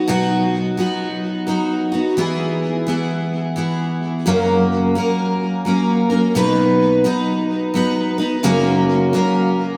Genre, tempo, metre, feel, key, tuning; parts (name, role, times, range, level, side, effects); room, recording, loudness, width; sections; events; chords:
country; 86 BPM; 3/4; swing 64% on 8ths; B major; A4 = 440 Hz
picked steel-string acoustic guitar; solo; 0.0-9.8 s; F#2 to B4; -18 LUFS; equal; lush chorus, diffuse ambient delay
wet lush hall reverb, RT60 2.7 s; dreamy mix soaked in reverb; -18 LUFS; mono
0.0-6.4 A section; 6.4-9.8 B section
0.0 B; 2.2 E; 4.3 F#; 6.4 B; 8.4 F#